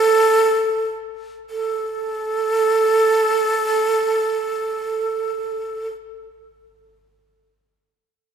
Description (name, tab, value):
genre	persian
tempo	free time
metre	none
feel	none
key	unclear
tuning	A4 = 440 Hz
part	breathy ney	solo	0.0-5.9 s	A4	-18 LUFS	right 2 dB	none
room	moderate concert hall reverb, RT60 2.3 s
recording	minimal, uncompressed stereo recording, faint mains hum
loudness	-18 LUFS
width	side -7 dB against mid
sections	0.0-1.5 A section; 1.5-5.5 B section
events	slowing down 0.0-1.5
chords	none